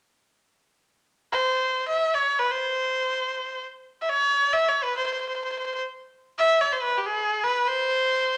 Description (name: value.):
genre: persian.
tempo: free time.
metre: none.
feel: none.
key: C dastgah chahargah.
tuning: A4 = 439 Hz.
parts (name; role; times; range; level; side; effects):
clear erhu; solo; 1.3-8.4 s; G4 to E5; -24 LUFS; equal; none.
room: moderate large studio reverb, RT60 1.2 s.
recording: none.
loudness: -25 LUFS.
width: mono.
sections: 1.1-8.4 A section.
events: none.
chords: none.